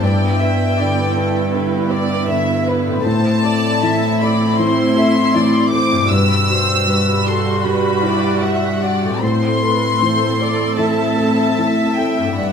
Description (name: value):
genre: cinematic, emotional film score for orchestra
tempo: 78 BPM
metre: 4/4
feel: rubato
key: A dorian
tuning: A4 = 441 Hz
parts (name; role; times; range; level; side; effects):
- warm symphonic violin section; melody; 0.0-12.5 s; F#5 to E6; -20 LUFS; left 3 dB; none
- warm symphonic violin section; second line; 0.0-12.5 s; A4 to E5; -23 LUFS; left 2 dB; none
- dark symphonic viola section; accompaniment; 0.0-12.5 s; G3 to D5; -21 LUFS; right 2 dB; none
- felt-muted upright piano; accompaniment; 0.0-12.5 s; G2 to B4; -21 LUFS; left 1 dB; none
- concert harp; arpeggios; 0.0-12.5 s; G2 to B5; -25 LUFS; left 4 dB; none
- rich studio cello section; bass; 0.0-12.5 s; G2 to A2; -21 LUFS; right 2 dB; none
room: wet scoring stage reverb, RT60 1.6 s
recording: none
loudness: -14 LUFS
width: side -7 dB against mid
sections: 0.0-12.5 A section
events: none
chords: 0.0 G6; 3.1 Am; 6.1 Emadd9/G; 9.2 Am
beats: | 0.02 0.78 1.53 2.29 | 3.05 3.82 4.58 5.33 | 6.10 6.88 7.65 8.41 | 9.22 10.01 10.78 11.57 | 12.38